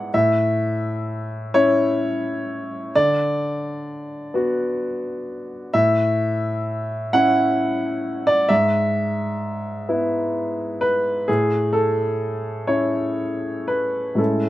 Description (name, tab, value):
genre	neoclassical minimalist piano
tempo	43 BPM (dotted quarters)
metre	6/8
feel	rubato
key	A major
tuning	A4 = 440 Hz
part	warm grand piano	solo	0.0-14.5 s	G#2 to F#5	-19 LUFS	equal	none
room	little or no reverb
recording	recorded outdoors, with no room sound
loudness	-19 LUFS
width	side -15 dB against mid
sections	0.0-14.5 A section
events	none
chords	0.1 A; 2.9 D6; 5.7 A; 8.5 E/G#; 11.3 A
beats	| 0.13 1.54 | 2.93 4.33 | 5.73 7.12 | 8.50 9.88 | 11.28 12.68 | 14.18